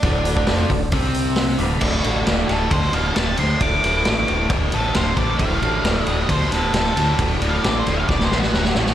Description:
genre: blues rock power trio and southern rock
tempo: 134 BPM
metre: 4/4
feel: straight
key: D mixolydian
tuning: A4 = 440 Hz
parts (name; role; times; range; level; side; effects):
- octave-fuzz lead guitar; melody; 0.0-8.9 s; D4 to D6; -24 LUFS; equal; distortion, slapback echo
- mellow tonewheel organ; sustained chords; 0.0-8.0 s; D4 to B5; -29 LUFS; right 4 dB; slow rotary speaker
- biting overdriven guitar; riff; 0.0-8.9 s; D2 to C4; -23 LUFS; left 1 dB; slapback echo
- growling fingered electric bass; bass; 0.0-8.9 s; D1 to D2; -23 LUFS; equal; overdrive
- vintage drum kit; drums; 0.0-8.9 s; crash cymbal, hi-hat, kick drum, ride cymbal, snare drum; -22 LUFS; equal; none
room: light reverb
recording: live gig heard through the venue's PA, recital hall reverb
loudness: -17 LUFS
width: side -11 dB against mid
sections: 0.0-1.8 A section; 1.8-8.9 B section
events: tonewheel organ fill 1.2-1.8; drum fill 8.1-8.9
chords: 0.0 D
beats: | 0.04 0.48 0.93 1.38 | 1.82 2.27 2.71 3.16 | 3.61 4.06 4.50 4.95 | 5.40 5.85 6.29 6.74 | 7.19 7.64 8.09 8.54

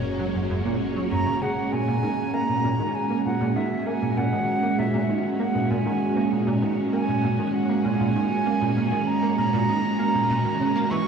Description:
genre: ambient, sequencer-driven space music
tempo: 98 BPM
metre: 4/4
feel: straight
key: unclear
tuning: A4 = 440 Hz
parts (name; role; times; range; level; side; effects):
- concert flute; melody; 0.0-11.1 s; C#5 to C#6; -28 LUFS; right 2 dB; shimmer reverb, tape echo
- string machine, full ensemble; sustained chords; 0.0-11.1 s; G#3 to F#4; -24 LUFS; right 2 dB; ensemble chorus, shimmer reverb
- analog drone; bass; 0.0-1.7 s; F#1; -37 LUFS; left 1 dB; chorus
- bubbling stepped-filter texture; texture; 0.0-1.7 s; C#5; -50 LUFS; right 2 dB; none
- plucky analog bass; riff; 0.2-11.0 s; F#2 to A#3; -26 LUFS; right 1 dB; ensemble chorus, shimmer reverb, tape echo
room: wet cathedral reverb, RT60 5.6 s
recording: in a vast, echoing space, small room ambience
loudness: -21 LUFS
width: side -6 dB against mid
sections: 0.0-1.7 A section; 1.7-11.1 B section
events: none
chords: 0.0 F#; 1.7 A#m7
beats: 0.50 1.11 | 1.72 2.34 2.95 3.56 | 4.17 4.79 5.40 6.01 | 6.62 7.23 7.85 8.46 | 9.07 9.68 10.30 10.91

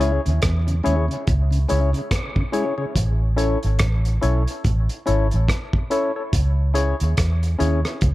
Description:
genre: dub reggae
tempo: 71 BPM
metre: 4/4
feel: swing 59% on 16ths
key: C# minor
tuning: A4 = 440 Hz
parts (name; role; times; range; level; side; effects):
- mellow tonewheel organ; accompaniment; 0.0-2.9 s; C#3 to E4; -29 LUFS; left 1 dB; slow rotary speaker, dub echo
- percussive organ stab; stabs; 0.0-7.8 s; C#4 to C#5; -25 LUFS; left 3 dB; chorus, dub echo
- vintage muted fingered electric bass; bass; 0.0-8.1 s; G#1 to E2; -19 LUFS; equal; none
- cloth-damped thuddy drum kit; drums; 0.0-8.1 s; hi-hat, kick drum, rim click; -23 LUFS; equal; none
room: light reverb, small room ambience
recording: echo-heavy mix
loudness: -18 LUFS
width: side -17 dB against mid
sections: 0.0-8.1 A section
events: none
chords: 0.0 C#m; 3.0 A; 6.3 C#m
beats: 0.42 1.27 2.11 | 2.95 3.80 4.64 5.48 | 6.33 7.17 8.01

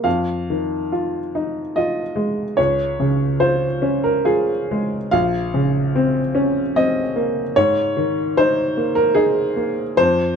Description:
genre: neoclassical minimalist piano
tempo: 73 BPM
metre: 3/4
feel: rubato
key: F minor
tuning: A4 = 440 Hz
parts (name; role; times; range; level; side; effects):
- warm upright piano; solo; 0.0-10.4 s; Bb1 to F5; -17 LUFS; equal; none
room: light reverb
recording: dark, warm production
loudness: -17 LUFS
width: side -6 dB against mid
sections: 0.1-10.4 A section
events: none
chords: 0.1 Fm7; 2.6 Db; 5.1 Bbmadd9; 7.6 Absus2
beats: | 0.05 0.91 1.75 | 2.58 3.41 4.25 | 5.12 5.95 6.76 | 7.57 8.37 9.18 | 9.99

